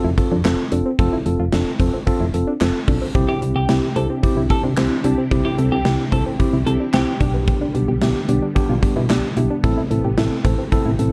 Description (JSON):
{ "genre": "synth-pop", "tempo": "111 BPM", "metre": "4/4", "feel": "straight", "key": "unclear", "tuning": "A4 = 440 Hz", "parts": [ { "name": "mellow tine electric piano", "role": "accompaniment", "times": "0.0-11.1 s", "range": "B3 to A4", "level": "-25 LUFS", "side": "equal", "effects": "none" }, { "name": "soft round pluck", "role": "arpeggios", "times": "0.0-11.1 s", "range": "B3 to G4", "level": "-30 LUFS", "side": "equal", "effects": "chorus, analog delay" }, { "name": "solid FM bass", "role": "bass", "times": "0.0-11.1 s", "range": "F1 to C3", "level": "-23 LUFS", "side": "equal", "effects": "none" }, { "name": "gated 80s drum kit", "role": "drums", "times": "0.2-11.1 s", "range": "handclaps, hi-hat, kick drum, snare drum", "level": "-23 LUFS", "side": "equal", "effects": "none" }, { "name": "string machine, cellos", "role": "sustained chords", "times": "3.1-11.1 s", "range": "C3 to G4", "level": "-29 LUFS", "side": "equal", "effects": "ensemble chorus" }, { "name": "twelve-string electric guitar", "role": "second line", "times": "3.3-7.3 s", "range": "G4 to A4", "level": "-30 LUFS", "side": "equal", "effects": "analog delay" } ], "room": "moderate studio reverb, RT60 0.6 s", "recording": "dark, warm production", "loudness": "-19 LUFS", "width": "mono", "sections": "0.0-11.1 A section", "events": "none", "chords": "0.0 F; 3.2 Cadd9; 7.2 G/B; 9.6 Amadd9" }